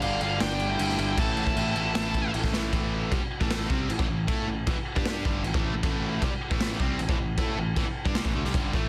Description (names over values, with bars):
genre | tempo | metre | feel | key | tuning
hard rock | 155 BPM | 4/4 | straight | A minor | A4 = 441 Hz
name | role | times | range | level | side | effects
high-gain lead guitar | melody | 0.0-2.3 s | F5 to A5 | -33 LUFS | equal | distortion, slapback echo
octave-fuzz lead guitar | second line | 0.0-2.3 s | D4 to E4 | -38 LUFS | equal | distortion
overdriven electric guitar | riff | 0.0-8.9 s | G2 to A4 | -39 LUFS | equal | none
overdriven semi-hollow guitar | riff | 0.0-8.9 s | G2 to A4 | -37 LUFS | equal | none
tight distorted guitar | riff | 0.0-8.9 s | G2 to A4 | -37 LUFS | equal | distortion
modern bright picked electric bass | bass | 0.0-8.9 s | G1 to A2 | -35 LUFS | equal | none
raw garage drum kit | drums | 0.0-8.8 s | crash cymbal, kick drum, snare drum | -30 LUFS | equal | none
room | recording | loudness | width
studio reverb | dense, heavily limited modern master | -27 LUFS | mono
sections
0.0-2.7 A section; 2.7-8.9 B section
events
drum fill 2.5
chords
0.0 G5; 1.2 A5; 2.7 Am